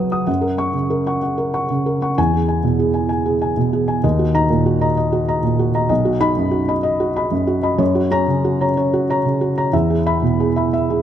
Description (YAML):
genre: neoclassical minimalist piano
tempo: 63 BPM (dotted quarters)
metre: 6/8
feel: rubato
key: unclear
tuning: A4 = 440 Hz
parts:
  - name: felt-muted upright piano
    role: solo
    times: 0.0-11.0 s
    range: B1 to D#6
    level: -16 LUFS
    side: equal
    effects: none
room: moderate concert hall reverb, RT60 2.0 s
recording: close, detailed microphones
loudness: -16 LUFS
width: side -10 dB against mid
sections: 0.0-11.0 A section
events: none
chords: 0.3 F#; 2.2 E; 4.0 D#m; 5.9 B; 7.8 F#; 9.7 E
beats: | 0.28 1.24 | 2.18 3.11 | 4.04 4.97 | 5.90 6.84 | 7.80 8.77 | 9.73 10.72